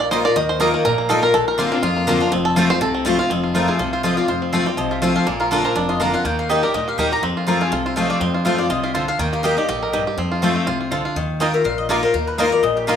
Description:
bluegrass; 244 BPM; 4/4; swing 55% on 8ths; F mixolydian; A4 = 440 Hz
bluegrass banjo; melody; 0.0-12.9 s; F3 to Eb5; -22 LUFS; right 4 dB
picked steel-string acoustic guitar; accompaniment; 0.0-13.0 s; F2 to Bb4; -19 LUFS; left 4 dB
upright bass; bass; 0.0-13.0 s; F1 to F2; -31 LUFS; right 1 dB
mandolin; stabs; 0.1-13.0 s; Bb3 to C6; -28 LUFS; right 6 dB
clear fiddle; second line; 1.7-2.3 s; D4 to F4; -29 LUFS; left 6 dB
mandolin; melody; 3.5-13.0 s; G4 to Bb5; -25 LUFS; left 3 dB
light reverb, small room reverb; rough home demo mix, studio reverb; -16 LUFS; side -8 dB against mid
0.0-3.3 A section; 3.3-11.2 B section; 11.2-13.0 C section
five-string banjo solo 0.0-3.3
0.0 Ebsus2; 1.3 Bbadd9; 2.3 F; 5.3 Bb; 6.2 Eb; 7.2 F; 9.2 Eb; 10.2 F; 11.2 Ebsus2
0.12 | 0.36 0.60 0.85 1.09 | 1.34 1.58 1.83 2.07 | 2.32 2.56 2.81 3.05 | 3.30 3.54 3.79 4.04 | 4.28 4.53 4.77 5.02 | 5.26 5.51 5.76 6.00 | 6.25 6.49 6.74 6.98 | 7.23 7.48 7.72 7.97 | 8.21 8.46 8.71 8.95 | 9.20 9.44 9.69 9.93 | 10.18 10.42 10.67 10.91 | 11.16 11.41 11.65 11.90 | 12.14 12.39 12.63 12.88

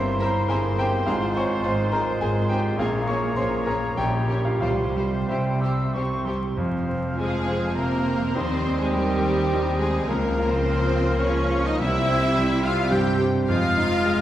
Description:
classical, romantic movement for piano and orchestra; 104 BPM; 3/4; rubato; F minor; A4 = 439 Hz
clear grand piano; melody; 0.0-14.2 s; Bb1 to E6; -25 LUFS; equal
clear clarinet; second line; 0.0-14.2 s; E4 to C5; -32 LUFS; left 1 dB
clear oboe; second line; 0.0-14.2 s; C5 to F5; -35 LUFS; equal
rich studio violin section; second line; 0.0-14.2 s; G4 to G5; -34 LUFS; left 3 dB
silver concert flute; second line; 0.0-14.2 s; G5 to G6; -32 LUFS; left 1 dB
warm bassoon; accompaniment; 0.0-14.2 s; F3 to Bb3; -34 LUFS; equal
clear symphonic double bass section; bass; 0.0-14.2 s; F1 to Eb2; -30 LUFS; right 1 dB
rich symphonic cello section; bass; 0.0-14.2 s; F2 to Eb3; -30 LUFS; right 1 dB
rich chamber violin section; melody; 0.2-14.2 s; G4 to G5; -36 LUFS; left 4 dB
rich symphonic viola section; accompaniment; 0.2-14.2 s; G3 to G4; -29 LUFS; right 1 dB
mellow French horn section; sustained chords; 1.1-14.2 s; F3 to Db4; -32 LUFS; equal
timpani; percussion; 4.6-5.6 s; barely audible
wet scoring stage reverb, RT60 1.7 s; heard from further back in the room, vinyl crackle; -20 LUFS; side -12 dB against mid
0.0-6.6 A section; 6.6-14.2 B section
0.0 C7/G; 1.1 Fm/Ab; 2.8 Bbm7; 4.0 Gdim/Bb; 4.6 C; 6.6 Fm; 8.4 Cm/Eb; 10.1 Bbm/Db; 11.8 C; 13.5 Fm7
0.49 | 1.06 1.64 2.21 | 2.79 3.38 3.99 | 4.63 5.31 5.96 | 6.59 7.18 7.77 | 8.35 8.93 9.51 | 10.08 10.64 11.22 | 11.79 12.36 12.92 | 13.48 14.06

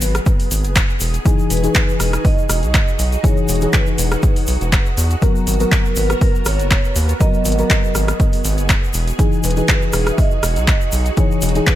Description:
deep house; 121 BPM; 4/4; swing 54% on 16ths; A4 = 440 Hz
soft string machine; sustained chords; 0.0-11.8 s; B3 to A#5; -28 LUFS; equal; ensemble chorus, sidechain pumping
mellow FM electric piano; stabs; 0.0-11.8 s; E3 to B4; -22 LUFS; left 3 dB; chorus, sidechain pumping, dub echo
round analog bass; bass; 0.0-11.6 s; E1 to E2; -18 LUFS; equal; tube saturation, sidechain pumping
deep house drum kit; drums; 0.0-11.8 s; handclaps, hi-hat, rim click; -21 LUFS; equal
egg shaker; percussion; 0.0-11.8 s; -28 LUFS; left 2 dB
electronic kick drum; drums; 0.3-11.8 s; -16 LUFS; equal
vibraphone with medium mallets; melody; 1.5-11.8 s; A#4 to E5; -26 LUFS; right 4 dB; ping-pong delay
little or no reverb; -14 LUFS; side -13 dB against mid
0.0-11.8 A section
0.0 G#m9; 1.0 Emaj7; 5.2 G#m9; 8.9 Emaj7
0.26 0.76 | 1.25 1.75 2.25 2.74 | 3.24 3.73 4.23 4.73 | 5.22 5.72 6.21 6.71 | 7.21 7.70 8.20 8.69 | 9.19 9.69 10.18 10.68 | 11.17 11.67

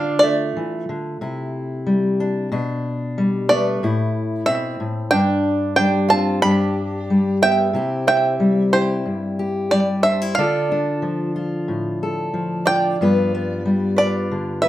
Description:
acoustic folk duo or small band; 92 BPM; 4/4; straight; C major; A4 = 441 Hz
bluegrass banjo; melody; 0.0-14.7 s; C5 to B5; -19 LUFS; right 1 dB; slapback echo, plate reverb
lap resonator guitar; second line; 0.0-14.7 s; A3 to E5; -24 LUFS; right 4 dB
fingerpicked steel-string acoustic guitar; accompaniment; 0.0-14.7 s; G2 to B4; -20 LUFS; left 2 dB
wet studio reverb, RT60 0.7 s; -17 LUFS; side -14 dB against mid
0.0-7.8 A section; 7.8-14.7 B section
0.0 Dm; 1.2 Cadd9; 2.5 G/B; 3.8 Am; 5.1 Gsus4; 6.4 G; 7.8 C; 10.4 Dm; 13.0 G7
0.56 1.21 1.86 | 2.52 3.17 3.83 4.48 | 5.13 5.79 6.44 7.10 | 7.75 8.40 9.06 9.72 | 10.37 11.03 11.68 12.34 | 13.00 13.65 14.31

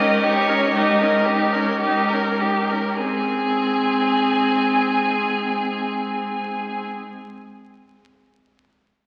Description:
classical, slow romantic movement for string quartet; 49-63 BPM; 4/4; rubato; Ab major; A4 = 440 Hz
rich violin; melody; 0.0-6.9 s; Db5 to Ab5; -27 LUFS; equal
rich violin; second line; 0.0-6.9 s; G4 to Bb4; -25 LUFS; equal
rich viola; accompaniment; 0.0-6.9 s; C4 to Eb4; -27 LUFS; equal
rich cello; bass; 0.0-6.9 s; Ab2; -30 LUFS; equal
wet concert hall reverb, RT60 2.2 s; very old 78 rpm record, vinyl crackle; -20 LUFS; mono
0.0-3.0 A section; 3.0-7.4 B section
slowing down 0.0-3.0
0.0 Eb7/Ab; 3.0 Ab
0.75 1.82 | 3.00 4.11 5.22 6.33

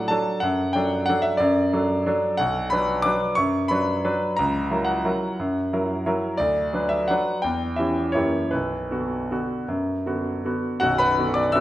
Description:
classical, piano waltz; 147-193 BPM; 3/4; rubato; B minor; A4 = 444 Hz
bright concert grand piano; solo; 0.0-11.6 s; B0 to E6; -21 LUFS; equal
wet recital hall reverb, RT60 1.3 s; -21 LUFS; side -14 dB against mid
0.0-10.8 A section
0.4 D/F#; 2.4 Bm; 4.4 F#7/C#; 6.4 Bm/D; 7.4 C#dim/E; 8.2 F#7b9; 8.5 Bm
0.09 | 0.42 0.74 1.07 | 1.39 1.71 2.06 | 2.39 2.71 3.05 | 3.38 3.71 4.05 | 4.38 4.71 5.06 | 5.39 5.72 6.07 | 6.40 6.73 7.09 | 7.44 7.78 8.15 | 8.53 8.91 9.31 | 9.69 10.06 10.46 | 10.83 11.19 11.55

